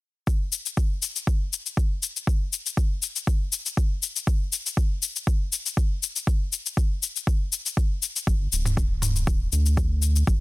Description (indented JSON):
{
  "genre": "afro house",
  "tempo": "120 BPM",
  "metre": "4/4",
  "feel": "swing 54% on 16ths",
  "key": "unclear",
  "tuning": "A4 = 440 Hz",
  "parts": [
    { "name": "electronic cabasa and toms", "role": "drums", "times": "0.3-10.4 s", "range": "none", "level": "-27 LUFS", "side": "left 5 dB", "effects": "overdrive" },
    { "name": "electronic kick drum", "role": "drums", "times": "0.3-10.4 s", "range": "none", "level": "-22 LUFS", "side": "equal", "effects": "overdrive" },
    { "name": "round analog bass", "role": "bass", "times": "8.3-10.4 s", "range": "D1 to D2", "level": "-23 LUFS", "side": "equal", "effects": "sidechain pumping" }
  ],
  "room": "little or no reverb",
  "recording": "dense, heavily limited modern master",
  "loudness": "-22 LUFS",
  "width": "side -18 dB against mid",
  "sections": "0.3-10.4 A section",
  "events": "none",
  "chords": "none"
}